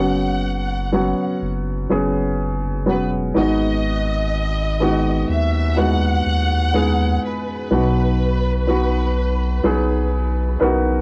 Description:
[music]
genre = pop ballad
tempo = 62 BPM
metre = 4/4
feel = straight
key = B major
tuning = A4 = 445 Hz
[part]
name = rich studio violin section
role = melody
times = 0.0-10.6 s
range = B4 to F#5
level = -28 LUFS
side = equal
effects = cassette tape
[part]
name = warm baby grand piano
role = accompaniment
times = 0.0-11.0 s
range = G#2 to B4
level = -22 LUFS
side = equal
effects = cassette tape
[part]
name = saturated sub bass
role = bass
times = 0.0-11.0 s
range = E1 to D#2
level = -23 LUFS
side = equal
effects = none
[sound]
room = light reverb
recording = home recording on cassette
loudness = -20 LUFS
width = mono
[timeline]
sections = 0.0-11.0 A section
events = none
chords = 0.0 F#sus4; 3.4 G#m7; 7.7 Bmaj7

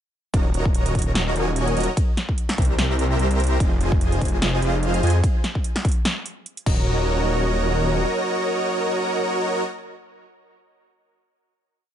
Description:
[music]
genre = future bass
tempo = 147 BPM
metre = 4/4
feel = swing 55% on 16ths, half-time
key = Eb dorian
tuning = A4 = 439 Hz
[part]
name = dense compressed supersaw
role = riff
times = 0.3-9.6 s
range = F4 to Bb5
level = -24 LUFS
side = right 1 dB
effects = sidechain pumping, tape echo
[part]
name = wide detuned saw bass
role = bass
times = 0.3-8.1 s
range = Eb1 to F2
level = -22 LUFS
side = equal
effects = chorus, sidechain pumping
[part]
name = big-room dance drum kit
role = drums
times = 0.3-6.8 s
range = crash cymbal, hi-hat, ride cymbal, snare drum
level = -27 LUFS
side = equal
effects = none
[part]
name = electronic kick drum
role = drums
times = 0.3-6.8 s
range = none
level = -21 LUFS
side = equal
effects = none
[sound]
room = little or no reverb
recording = nothing above 11.0 kHz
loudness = -19 LUFS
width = side -10 dB against mid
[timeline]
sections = 0.3-6.9 drop; 6.9-10.1 final hit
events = drop 0.3-6.9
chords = 0.3 Ebm7; 2.0 C7; 3.6 Fm7; 5.2 N.C.; 6.7 Ebm7

